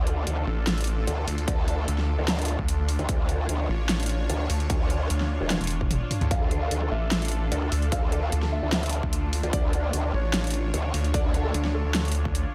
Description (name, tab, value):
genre	heavy wobble dubstep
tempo	149 BPM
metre	4/4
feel	half-time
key	D harmonic minor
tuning	A4 = 440 Hz
part	lush unison pad	sustained chords	0.0-12.5 s	D4 to C#5	-36 LUFS	equal	chorus, phaser, sidechain pumping
part	growl bass	bass	0.0-11.5 s	E1 to D2	-29 LUFS	equal	chorus, overdrive
part	dubstep drum kit	drums	0.1-12.4 s	hi-hat, snare drum, toms	-32 LUFS	equal	none
part	snarling distorted saw bass	bass	0.5-12.4 s	E1 to D2	-28 LUFS	equal	distortion, overdrive
part	electronic kick drum	drums	1.5-12.3 s	none	-30 LUFS	equal	overdrive
part	felt-muted upright piano	melody	6.3-12.5 s	D4 to F5	-36 LUFS	equal	tape echo
room	digital ambience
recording	none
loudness	-26 LUFS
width	mono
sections	0.0-12.5 A section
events	drum fill 5.5-6.3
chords	0.0 Dm